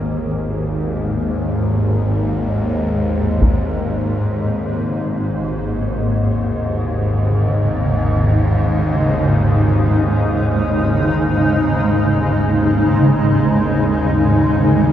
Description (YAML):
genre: dark ambient drone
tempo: free time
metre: none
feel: none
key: unclear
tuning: A4 = 440 Hz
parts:
  - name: granular cloud pad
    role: sustained chords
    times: 0.0-14.9 s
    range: G#2 to D#4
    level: -17 LUFS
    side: equal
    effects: built-in reverb
  - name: bowed-like drone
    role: drone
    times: 0.0-14.9 s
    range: G#1 to D#2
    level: -18 LUFS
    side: equal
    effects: built-in reverb, phaser
  - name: taiko ensemble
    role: percussion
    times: 3.4-3.6 s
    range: none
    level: -17 LUFS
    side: equal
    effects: low-pass filter on perc
room: moderate huge ambient reverb, RT60 8.3 s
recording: none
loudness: -15 LUFS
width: side -11 dB against mid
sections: 0.0-14.9 A section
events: none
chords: 0.0 G#5; 3.4 C#5/G#